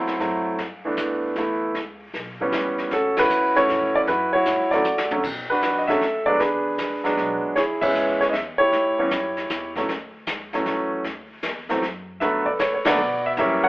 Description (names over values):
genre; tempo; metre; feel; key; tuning
jazz piano trio; 155 BPM; 3/4; swing 67% on 8ths; D major, B minor from 5.2 s; A4 = 439 Hz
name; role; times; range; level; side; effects
clear concert grand piano; melody; 0.0-13.7 s; D3 to F#5; -20 LUFS; equal; none
upright bass; bass; 0.0-13.7 s; A1 to B2; -41 LUFS; equal; none
jazz brush drum kit; drums; 0.1-13.7 s; brushed snare drum, crash cymbal, hi-hat, kick drum, ride cymbal, snare drum, toms; -30 LUFS; left 1 dB; none
room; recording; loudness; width
light reverb; band playing live in one room, telephone sound; -20 LUFS; side -21 dB against mid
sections
0.0-5.2 A section; 5.2-13.7 B section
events
band accent 3.1, 7.8, 12.8; drum fill 4.9-5.2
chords
0.0 D7 (rootless); 0.6 G6; 1.8 A7; 2.9 Dmaj9; 5.2 Bm7; 6.4 E9; 7.6 Amaj7; 8.7 A7; 9.9 Dmaj9; 11.1 Dadd9; 12.2 Gmaj9